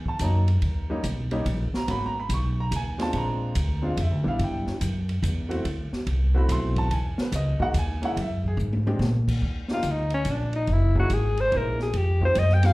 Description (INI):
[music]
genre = jazz, small-group swing and bop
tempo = 143 BPM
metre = 3/4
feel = swing 66% on 8ths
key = unclear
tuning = A4 = 441 Hz
[part]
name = warm upright piano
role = accompaniment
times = 0.0-12.7 s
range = F#3 to C#6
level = -30 LUFS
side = right 1 dB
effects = slapback echo
[part]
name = upright bass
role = bass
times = 0.0-12.7 s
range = Gb1 to A#2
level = -24 LUFS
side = equal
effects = none
[part]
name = open jazz drum kit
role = drums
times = 0.1-12.7 s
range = crash cymbal, hi-hat, kick drum, ride cymbal, snare drum, toms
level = -33 LUFS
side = equal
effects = none
[part]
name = breathy alto saxophone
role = melody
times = 9.7-12.7 s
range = Db4 to G5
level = -25 LUFS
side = left 1 dB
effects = slapback echo
[sound]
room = light reverb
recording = live gig heard through the venue's PA, club reverb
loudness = -22 LUFS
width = side -20 dB against mid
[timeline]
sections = 0.0-9.4 A section; 9.4-12.7 A section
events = drum fill 8.6-9.0; alto saxophone solo 9.4-12.7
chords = 0.0 D#m; 0.6 D#7; 1.9 G#m11; 3.1 A#9; 4.4 Cmaj7 (rootless); 5.6 D9; 6.9 Emaj9#11; 8.2 F#sus2; 9.0 N.C.; 9.4 Ebmaj7(no3); 10.7 Gb13; 11.9 Fm9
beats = 0.20 | 0.62 1.04 1.46 | 1.87 2.29 2.71 | 3.13 3.55 3.97 | 4.39 4.81 5.23 | 5.65 6.07 6.49 | 6.90 7.32 7.74 | 8.16 8.58 9.00 | 9.42 9.84 10.26 | 10.68 11.10 11.52 | 11.94 12.36